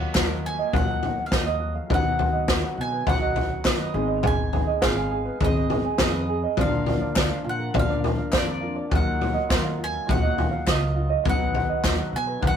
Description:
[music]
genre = indie folk with a building arrangement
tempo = 103 BPM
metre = 4/4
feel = straight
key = Eb minor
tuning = A4 = 441 Hz
[part]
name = bowl-back mandolin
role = melody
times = 0.0-12.6 s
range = D5 to Ab5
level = -30 LUFS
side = equal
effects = none
[part]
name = felt-muted upright piano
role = accompaniment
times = 0.0-12.6 s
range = Ab1 to F#5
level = -33 LUFS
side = left 2 dB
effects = none
[part]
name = picked steel-string acoustic guitar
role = accompaniment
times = 0.0-12.6 s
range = Ab2 to B4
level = -33 LUFS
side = left 3 dB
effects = none
[part]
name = tenor ukulele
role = arpeggios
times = 0.0-12.6 s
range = F4 to Ab5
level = -30 LUFS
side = right 8 dB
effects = none
[part]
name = upright bass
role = bass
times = 0.1-12.6 s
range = Ab1 to B2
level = -30 LUFS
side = equal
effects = none
[part]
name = unplugged drum kit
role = drums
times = 0.1-12.6 s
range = kick drum, snare drum, toms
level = -23 LUFS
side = equal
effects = none
[part]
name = group handclap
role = percussion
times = 0.1-12.0 s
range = none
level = -34 LUFS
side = left 4 dB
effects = none
[sound]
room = moderate studio reverb, RT60 0.6 s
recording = rough rehearsal-room recording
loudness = -21 LUFS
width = side -8 dB against mid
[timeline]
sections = 0.0-12.6 A section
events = none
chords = 0.0 Ebmadd9; 1.9 B; 3.9 Abm; 6.6 Bb; 8.9 Ebmadd9; 11.3 B

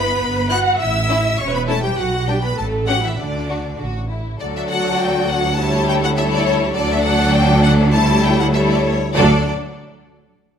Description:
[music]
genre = quick classical-period movement for string orchestra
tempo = 101 BPM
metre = 2/4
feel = straight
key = D major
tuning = A4 = 438 Hz
[part]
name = rich symphonic violin section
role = melody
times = 0.0-9.5 s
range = C#5 to F#6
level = -22 LUFS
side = left 4 dB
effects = none
[part]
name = warm symphonic violin section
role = second line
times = 0.0-9.5 s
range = B3 to D5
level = -22 LUFS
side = left 3 dB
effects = none
[part]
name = warm symphonic viola section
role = accompaniment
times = 0.0-9.5 s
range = F#3 to F#5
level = -20 LUFS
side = right 1 dB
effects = none
[part]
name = rich symphonic cello section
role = bass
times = 0.0-9.5 s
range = D2 to F#4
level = -21 LUFS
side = right 1 dB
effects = none
[part]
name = rich symphonic double bass section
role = bass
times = 0.0-9.5 s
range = E1 to D2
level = -22 LUFS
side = right 2 dB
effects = none
[sound]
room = moderate scoring stage reverb, RT60 1.4 s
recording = none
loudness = -15 LUFS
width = side -8 dB against mid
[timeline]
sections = 0.0-4.4 A section; 4.4-9.2 B section; 9.2-10.4 C section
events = none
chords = 0.0 Em/G (rootless); 0.8 A; 2.0 G/B; 2.6 A7; 3.2 D; 5.6 A7/D; 6.8 D; 7.9 A7/D; 9.2 D

